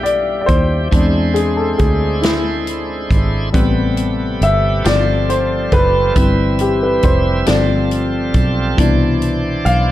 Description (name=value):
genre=slow gospel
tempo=46 BPM (dotted quarters)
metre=6/8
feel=straight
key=C major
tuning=A4 = 441 Hz
part: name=warm upright piano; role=accompaniment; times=0.0-9.9 s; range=B2 to F5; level=-16 LUFS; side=left 2 dB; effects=none
part: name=bright tonewheel organ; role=sustained chords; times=0.0-9.9 s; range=C3 to E5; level=-23 LUFS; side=right 3 dB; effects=slow rotary speaker, overdrive
part: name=fingered electric bass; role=bass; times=0.0-9.9 s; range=F1 to E2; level=-18 LUFS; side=equal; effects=none
part: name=natural country drum kit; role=drums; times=0.1-9.9 s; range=hi-hat, kick drum, snare drum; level=-18 LUFS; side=equal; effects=none
room=light reverb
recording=dark, warm production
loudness=-13 LUFS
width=side -14 dB against mid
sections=0.0-9.9 A section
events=upright piano solo 0.0-9.9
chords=0.0 Cmaj7; 0.9 E7b13; 3.5 Am9; 4.9 G9sus4; 6.2 C/G; 7.5 G9sus4; 8.8 Cmaj9